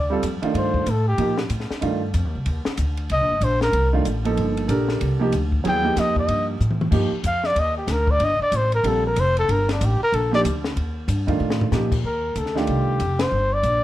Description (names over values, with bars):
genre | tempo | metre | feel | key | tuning
modal jazz | 188 BPM | 4/4 | swing 62% on 8ths | C dorian | A4 = 440 Hz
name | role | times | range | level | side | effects
breathy trumpet | melody | 0.0-13.8 s | D4 to G5 | -22 LUFS | left 1 dB | none
upright bass | bass | 0.0-13.8 s | F1 to Bb2 | -23 LUFS | equal | none
warm concert grand piano | accompaniment | 0.1-13.0 s | Eb3 to Bb4 | -24 LUFS | right 3 dB | none
compact cocktail drum kit | drums | 0.2-13.7 s | crash cymbal, hi-hat, kick drum, ride cymbal, snare drum, toms | -29 LUFS | left 2 dB | none
room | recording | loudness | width
light reverb | none | -19 LUFS | side -14 dB against mid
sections
0.0-12.0 A section; 12.0-13.8 B section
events
trumpet solo 0.0-12.0; drum fill 6.6-6.9, 11.4-11.7; band accent 13.2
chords
0.0 Cm9 (rootless); 12.0 Cmadd9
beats
0.23 | 0.55 0.87 1.19 1.50 | 1.82 2.14 2.46 2.78 | 3.10 3.42 3.73 4.05 | 4.37 4.69 5.01 5.33 | 5.65 5.97 6.29 6.61 | 6.92 7.24 7.56 7.88 | 8.20 8.52 8.84 9.16 | 9.48 9.80 10.12 10.44 | 10.76 11.08 11.40 11.72 | 12.04 12.36 12.68 13.00 | 13.32 13.64